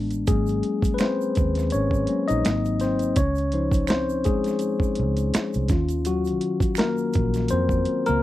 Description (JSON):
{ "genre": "R&B, neo-soul", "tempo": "83 BPM", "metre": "4/4", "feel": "swing 56% on 16ths", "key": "Eb dorian", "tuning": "A4 = 440 Hz", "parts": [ { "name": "tine electric piano", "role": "accompaniment", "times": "0.0-8.2 s", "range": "Eb3 to Eb5", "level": "-23 LUFS", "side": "left 3 dB", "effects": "none" }, { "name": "vintage muted fingered electric bass", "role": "bass", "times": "0.0-8.2 s", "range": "Ab1 to F2", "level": "-26 LUFS", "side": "right 1 dB", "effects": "none" }, { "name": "dusty soul sampler-style drum kit", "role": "drums", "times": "0.1-8.2 s", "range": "hi-hat, kick drum, snare drum", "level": "-24 LUFS", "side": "right 1 dB", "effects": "overdrive" }, { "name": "egg shaker and finger snaps", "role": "percussion", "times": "0.1-8.2 s", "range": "none", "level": "-40 LUFS", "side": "right 22 dB", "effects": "none" } ], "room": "little or no reverb", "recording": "dry, close 1970s-style studio recording", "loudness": "-21 LUFS", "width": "side -14 dB against mid", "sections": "0.3-8.2 A section", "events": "tine electric piano solo 0.3-8.2", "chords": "0.3 Ab7sus4; 2.4 Ab9; 3.2 Dbmaj7; 5.7 Ebm9" }